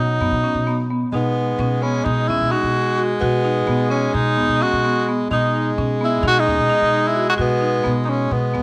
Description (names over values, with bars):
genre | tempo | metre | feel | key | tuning
progressive instrumental, progressive | 259 BPM (eighths) | 9/8 | straight | unclear | A4 = 440 Hz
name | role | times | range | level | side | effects
warm tenor saxophone | melody | 0.0-8.6 s | B3 to F#4 | -22 LUFS | equal | none
clear alto saxophone | second line | 0.0-8.6 s | F#3 to G#3 | -26 LUFS | equal | tape echo
marimba with medium mallets | arpeggios | 0.0-8.6 s | B3 to F#4 | -27 LUFS | equal | tape echo
upright bass | bass | 0.0-8.6 s | D#2 to B2 | -26 LUFS | equal | none
room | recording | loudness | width
moderate plate reverb, RT60 2.8 s | none | -19 LUFS | mono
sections
0.0-8.6 A section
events
none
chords
0.0 B; 1.1 G#m